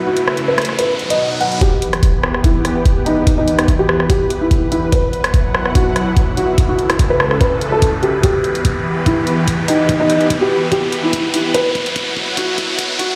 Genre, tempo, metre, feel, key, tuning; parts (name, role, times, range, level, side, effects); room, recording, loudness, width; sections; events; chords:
heavy wobble dubstep; 145 BPM; 4/4; swing 53% on 16ths, half-time; E harmonic minor; A4 = 440 Hz
supersaw pad; sustained chords; 0.0-13.2 s; C#2 to F#5; -23 LUFS; equal; sidechain pumping
riser; sound effects; 0.0-13.2 s; -26 LUFS; equal
felt-muted upright piano; melody; 0.1-13.2 s; D#4 to F#5; -20 LUFS; equal; dub echo
dubstep drum kit; drums; 0.2-13.1 s; hi-hat, rim click; -23 LUFS; equal; high-pass filter on hats, studio reverb, high-pass filter on snare
electronic kick drum; drums; 1.6-13.1 s; -18 LUFS; equal; studio reverb
moderate digital room reverb, RT60 1.2 s, digital ambience; played on a big sound system in a bare room, large studio reverb, high-pass filter; -15 LUFS; mono
0.0-1.6 A section; 1.6-13.2 B section
riser 0.0-1.6, 1.6-13.2; build-up 1.6-13.2; filter sweep 1.6-13.2; drum fill 8.2-13.2
0.0 Aadd9/C#; 0.8 B; 1.6 Em; 4.9 Bsus4; 6.6 Aadd9/C#; 8.2 Em; 11.5 Bsus4